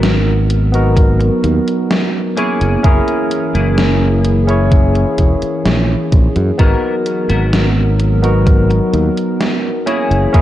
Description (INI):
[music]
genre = vaporwave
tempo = 64 BPM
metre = 4/4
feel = straight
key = G# minor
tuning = A4 = 440 Hz
[part]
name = barky tine electric piano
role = accompaniment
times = 0.0-10.4 s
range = B3 to C#5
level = -18 LUFS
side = left 1 dB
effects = wide subtle chorus, tape echo
[part]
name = warbly tape-like pad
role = sustained chords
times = 0.0-10.4 s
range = E3 to A#4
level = -20 LUFS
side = right 1 dB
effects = chorus, built-in reverb
[part]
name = clean electric guitar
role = riff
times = 0.0-10.4 s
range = A#3 to A#4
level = -24 LUFS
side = left 3 dB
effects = analog chorus, tape echo
[part]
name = modern bright fingered electric bass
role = bass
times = 0.0-10.4 s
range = E1 to F#2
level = -14 LUFS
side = equal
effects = none
[part]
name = gated 80s digital drum machine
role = drums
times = 0.0-10.4 s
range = hi-hat, snare drum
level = -19 LUFS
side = equal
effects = gated reverb, gated reverb snare, overdrive
[part]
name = electronic kick drum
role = drums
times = 1.0-10.4 s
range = none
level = -11 LUFS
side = equal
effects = overdrive
[sound]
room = little or no reverb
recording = dark, warm production, cassette tape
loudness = -11 LUFS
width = side -13 dB against mid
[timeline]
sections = 0.0-10.4 A section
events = none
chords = 0.0 G#m9; 2.4 F#9; 6.6 G#m9; 9.9 F#9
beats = 0.03 0.97 1.91 | 2.84 3.78 4.72 5.66 | 6.59 7.53 8.47 9.40 | 10.34